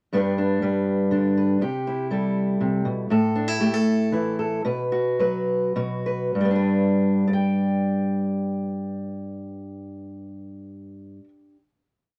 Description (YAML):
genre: folk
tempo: 97-121 BPM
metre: 3/4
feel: straight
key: G major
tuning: A4 = 441 Hz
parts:
  - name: fingerpicked steel-string acoustic guitar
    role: solo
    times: 0.1-11.6 s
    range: G2 to G5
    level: -24 LUFS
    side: equal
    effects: none
room: light reverb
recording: none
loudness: -23 LUFS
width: mono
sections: 0.1-6.4 breakdown; 6.4-10.1 final chord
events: slowing down 3.1-6.4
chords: 0.1 G; 1.6 C; 3.1 A5; 4.6 B5; 6.4 G